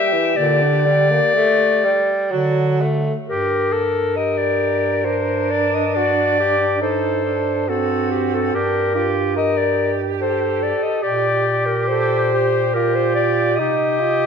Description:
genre	classical, lyrical piece for single-reed quartet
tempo	61-73 BPM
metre	3/4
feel	rubato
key	G minor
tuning	A4 = 440 Hz
part	warm clarinet	melody	0.0-14.3 s	G4 to E5	-19 LUFS	left 4 dB	none
part	warm alto saxophone	second line	0.0-14.3 s	C4 to A4	-23 LUFS	right 8 dB	none
part	mellow tenor saxophone	accompaniment	0.0-14.3 s	Bb2 to Bb4	-22 LUFS	equal	none
part	mellow bass clarinet	bass	0.4-14.3 s	G2 to D3	-24 LUFS	right 2 dB	none
room	moderate concert hall reverb, RT60 1.8 s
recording	minimal, uncompressed stereo recording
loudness	-16 LUFS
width	side -6 dB against mid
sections	0.0-3.3 A section; 3.3-14.3 B section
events	none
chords	0.4 Gm/Bb; 2.3 D; 3.3 Gm; 6.0 D7/G; 8.5 Gm; 11.0 Gm/Bb; 13.6 Cmadd11

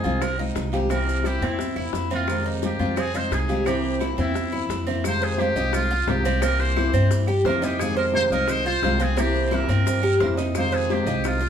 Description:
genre	latin, Cuban son and guajira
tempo	174 BPM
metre	4/4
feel	straight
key	F minor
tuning	A4 = 441 Hz
part	trumpet with metal mute	melody	0.0-11.5 s	E4 to C5	-27 LUFS	equal	none
part	nylon-string guitar	accompaniment	0.0-11.5 s	C3 to F4	-27 LUFS	left 1 dB	none
part	Cuban tres	arpeggios	0.0-11.5 s	C4 to C5	-27 LUFS	right 2 dB	none
part	upright bass	bass	0.0-11.5 s	C2 to G2	-25 LUFS	equal	none
part	bongos	percussion	0.0-11.4 s	none	-33 LUFS	left 5 dB	none
part	guiro	percussion	0.0-11.5 s	none	-42 LUFS	right 5 dB	none
part	maracas	percussion	0.0-11.5 s	none	-43 LUFS	left 6 dB	none
part	claves	percussion	0.2-11.4 s	none	-41 LUFS	right 5 dB	none
room	wet studio reverb, RT60 0.9 s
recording	heard from further back in the room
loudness	-20 LUFS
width	side -8 dB against mid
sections	0.0-5.0 A section; 5.0-11.5 B section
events	none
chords	0.0 Fm9; 0.9 C7; 2.3 Fm9; 3.7 C7; 5.0 Fm9; 6.4 C7; 7.8 Fm7; 9.2 C7; 10.6 Fm9

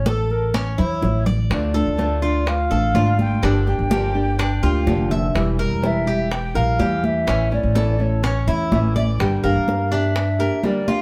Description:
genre	latin, Cuban son and guajira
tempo	125 BPM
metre	4/4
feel	straight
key	unclear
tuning	A4 = 440 Hz
part	mellow hollow jazz flute	melody	0.0-11.0 s	A4 to G5	-27 LUFS	equal	none
part	Cuban tres	arpeggios	0.0-11.0 s	C#4 to E5	-29 LUFS	equal	none
part	upright bass	bass	0.0-10.5 s	E1 to G2	-23 LUFS	equal	none
part	bongos	percussion	0.1-11.0 s	none	-33 LUFS	equal	none
part	congas	percussion	0.1-11.0 s	none	-28 LUFS	equal	none
part	nylon-string guitar	accompaniment	1.5-11.0 s	D3 to G4	-26 LUFS	equal	none
room	moderate studio reverb, RT60 0.7 s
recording	heard from further back in the room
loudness	-20 LUFS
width	mono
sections	0.0-9.2 A section; 9.2-11.0 B section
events	drum fill 0.5-1.5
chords	0.0 A; 1.5 Dm; 3.4 Gm7; 5.4 Edim; 7.3 A; 9.2 Gm

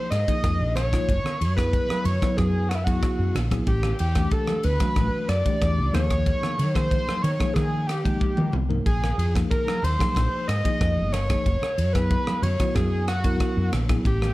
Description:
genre	electric jazz fusion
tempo	93 BPM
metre	4/4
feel	straight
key	unclear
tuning	A4 = 435 Hz
part	overdriven synth lead	melody	0.0-14.3 s	Fb4 to Eb5	-28 LUFS	equal	distortion
part	tine electric piano	accompaniment	0.0-14.1 s	E3 to Cb5	-29 LUFS	left 2 dB	medium stereo tremolo
part	woody fretless electric bass	bass	0.1-14.3 s	Gb1 to Eb3	-24 LUFS	equal	none
part	crisp fusion drum kit	drums	0.1-14.3 s	kick drum, ride cymbal, rim click, toms	-26 LUFS	equal	none
part	congas	percussion	0.8-14.3 s	none	-33 LUFS	right 3 dB	none
room	light reverb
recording	dark, warm production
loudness	-21 LUFS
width	side -18 dB against mid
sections	0.0-14.3 A section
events	drum fill 8.2-8.9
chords	0.0 Bb7sus4; 1.1 Gb9sus4; 3.7 A9sus4; 5.9 Eb9sus4; 8.9 Bb9sus4; 11.5 Gb9sus4

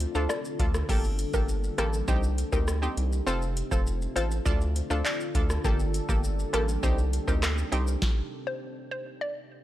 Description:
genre	dancehall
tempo	101 BPM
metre	4/4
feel	straight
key	G minor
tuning	A4 = 440 Hz
part	deep dark ambient pad	sustained chords	0.0-8.0 s	C3 to A4	-36 LUFS	left 1 dB	chorus, built-in reverb, sidechain pumping
part	round analog bass	bass	0.0-8.0 s	F1 to D2	-28 LUFS	equal	none
part	booming analog drum machine	drums	0.0-8.2 s	crash cymbal, handclaps, hi-hat, kick drum, rim click, shaker, snare drum	-28 LUFS	equal	overdrive
part	hollow square pluck	melody	0.1-9.3 s	Bb4 to D5	-36 LUFS	left 1 dB	chorus, analog delay
part	analog pluck	accompaniment	0.1-7.9 s	Bb3 to A4	-33 LUFS	equal	chorus, sidechain pumping
room	little or no reverb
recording	dry, gritty hardware recording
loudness	-25 LUFS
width	side -14 dB against mid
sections	0.9-9.6 A section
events	stop 8.0-9.6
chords	0.0 Dm; 0.9 Gmadd9; 2.1 Cm; 3.3 F; 4.5 Dm; 5.6 Gmadd9; 6.8 Cm; 8.0 N.C.

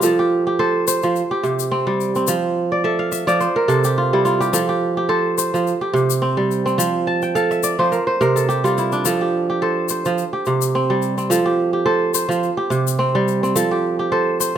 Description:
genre	west african traditional, West African string and xylophone music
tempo	106 BPM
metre	4/4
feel	swing 55% on 16ths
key	F major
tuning	A4 = 440 Hz
part	kora	arpeggios	0.0-14.6 s	C3 to A5	-16 LUFS	right 2 dB	none
part	egg shaker	percussion	0.0-14.5 s	none	-25 LUFS	left 15 dB	none
room	moderate recital hall reverb, RT60 1.6 s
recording	close, detailed microphones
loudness	-16 LUFS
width	side -9 dB against mid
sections	0.0-14.6 A section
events	kora fill 2.7-4.5, 7.1-9.0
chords	0.0 F; 1.2 C5; 2.3 F; 3.4 C5; 4.5 F; 5.7 C5; 6.8 F; 7.9 C5; 9.0 F; 10.2 C5; 11.3 F; 12.4 C5; 13.6 F

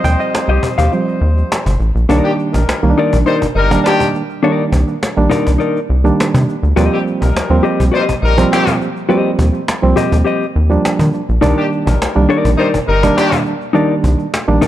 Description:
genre	funk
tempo	103 BPM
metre	4/4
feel	straight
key	C minor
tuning	A4 = 440 Hz
part	mellow horn section	second line	0.0-13.4 s	Eb3 to C5	-19 LUFS	left 3 dB	none
part	barky reed electric piano	stabs	0.0-14.7 s	D3 to G5	-16 LUFS	right 3 dB	overdrive, tape echo
part	rubbery square bass	bass	0.0-14.6 s	G1 to Eb3	-14 LUFS	equal	none
part	cajon	drums	0.0-14.7 s	none	-20 LUFS	equal	none
part	mellow electric guitar	accompaniment	0.5-14.7 s	Eb4 to F5	-18 LUFS	left 6 dB	none
room	light reverb, small room ambience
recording	dark, warm production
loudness	-12 LUFS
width	side -13 dB against mid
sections	0.0-2.1 A section; 2.1-14.7 B section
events	reed electric piano solo 0.0-2.1; reed electric piano fill 14.3-14.7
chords	0.0 Eb6; 2.1 Cm9; 6.8 Eb6; 11.4 Cm9

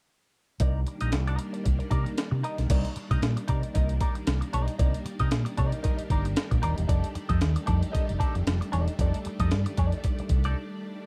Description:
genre	funk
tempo	115 BPM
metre	4/4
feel	swing 56% on 16ths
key	C dorian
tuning	A4 = 440 Hz
part	clean electric guitar	accompaniment	0.6-10.6 s	Eb4 to Eb5	-37 LUFS	equal	wah
part	string machine, violins	sustained chords	0.6-11.1 s	Eb3 to D4	-40 LUFS	equal	ensemble chorus
part	fingered electric bass	bass	0.6-10.5 s	Eb1 to C3	-29 LUFS	equal	none
part	breakbeat sampler-style drum kit	drums	0.6-10.6 s	crash cymbal, hi-hat, kick drum, snare drum	-30 LUFS	equal	none
room	light reverb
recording	dark, warm production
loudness	-27 LUFS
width	mono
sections	0.6-2.7 A section; 2.7-11.1 B section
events	break 10.6-11.1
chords	0.6 Cm9; 6.9 F13

